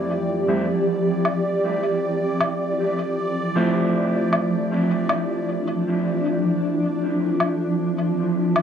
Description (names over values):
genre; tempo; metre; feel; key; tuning
ambient dub; 78 BPM; 4/4; swing 55% on 16ths; unclear; A4 = 441 Hz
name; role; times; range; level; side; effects
granular cloud pad; sustained chords; 0.0-8.6 s; F3 to A4; -22 LUFS; equal; built-in reverb
mellow electric guitar; stabs; 0.0-6.6 s; F2 to E4; -26 LUFS; equal; low-pass filter, dub echo
bubbling stepped-filter texture; texture; 0.0-8.6 s; D5; -29 LUFS; right 1 dB; chorus, built-in reverb
woodblock; drums; 1.2-8.6 s; none; -24 LUFS; left 1 dB; studio reverb, dub echo
room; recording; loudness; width
moderate plate reverb, RT60 3.3 s; echo-heavy mix, small room ambience; -20 LUFS; side -8 dB against mid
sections
0.0-8.6 A section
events
filter sweep on ambient pad 0.0-8.6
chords
0.0 Fmaj9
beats
| 0.10 0.87 1.64 2.41 | 3.17 3.94 4.71 5.48 | 6.25 7.02 7.79 8.56